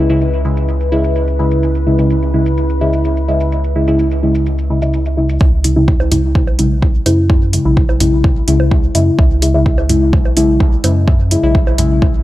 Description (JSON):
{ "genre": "dub techno", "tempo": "127 BPM", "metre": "4/4", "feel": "straight", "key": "C# minor", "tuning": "A4 = 438 Hz", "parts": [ { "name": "deep dark ambient pad", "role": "sustained chords", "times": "0.0-5.4 s", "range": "C#4 to B4", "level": "-24 LUFS", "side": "left 3 dB", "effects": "chorus, built-in reverb, sidechain pumping" }, { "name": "deep mellow chord stab", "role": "stabs", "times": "0.0-12.0 s", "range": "C#3 to E4", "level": "-15 LUFS", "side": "left 1 dB", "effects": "chorus, phaser, dub echo" }, { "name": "round analog bass", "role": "bass", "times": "0.0-12.2 s", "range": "B1 to F#2", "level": "-16 LUFS", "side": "equal", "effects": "tube saturation, sidechain pumping" }, { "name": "electronic shaker and hi-hat", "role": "drums", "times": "0.1-11.9 s", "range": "none", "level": "-22 LUFS", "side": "equal", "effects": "low-pass filter on perc, small room ambience, low-pass filter on hats" }, { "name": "electronic kick drum", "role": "drums", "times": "5.4-12.1 s", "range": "none", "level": "-13 LUFS", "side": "equal", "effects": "small room ambience" }, { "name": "electronic bongos and toms", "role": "percussion", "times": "6.0-11.9 s", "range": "none", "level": "-24 LUFS", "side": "right 2 dB", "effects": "sidechain pumping on perc, small room ambience, sidechain pumping on toms, dub echo" } ], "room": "light reverb", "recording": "none", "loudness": "-11 LUFS", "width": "side -15 dB against mid", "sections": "0.0-5.4 A section; 5.4-12.2 B section", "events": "none", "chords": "0.0 C#m" }